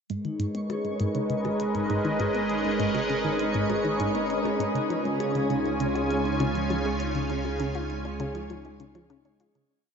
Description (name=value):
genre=ambient, sequencer-driven space music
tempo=100 BPM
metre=4/4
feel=straight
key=G# dorian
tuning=A4 = 440 Hz
part: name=sweeping resonant pad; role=sustained chords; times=0.1-9.7 s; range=C#3 to G#5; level=-28 LUFS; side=equal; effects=chorus
part: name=vibraphone with soft mallets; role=arpeggios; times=0.1-9.7 s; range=G#3 to G#4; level=-31 LUFS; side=moving between left 1 dB and right 6 dB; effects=auto-pan, ping-pong delay
part: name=analog pluck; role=riff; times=0.1-9.6 s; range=G#2 to E#4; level=-32 LUFS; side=equal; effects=chorus, ping-pong delay
part: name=round analog bass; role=bass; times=0.1-9.7 s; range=G#1 to C#2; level=-39 LUFS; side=equal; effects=none
part: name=electronic hi-hat and percussion blips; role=percussion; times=0.1-9.7 s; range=none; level=-43 LUFS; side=left 8 dB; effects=overdrive, ping-pong delay
part: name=twinkling granular texture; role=texture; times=0.6-9.7 s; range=C#4 to C#5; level=-35 LUFS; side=left 2 dB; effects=built-in reverb
room=wet shimmer reverb, RT60 8.6 s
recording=nothing above 7.6 kHz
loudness=-25 LUFS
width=side -6 dB against mid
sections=0.1-9.7 A section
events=fade-in on analog synth bass 0.1-9.7; filter sweep on synth arpeggio sound 0.1-9.7; fade-out 6.5-9.7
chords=0.1 G#madd9; 4.9 C#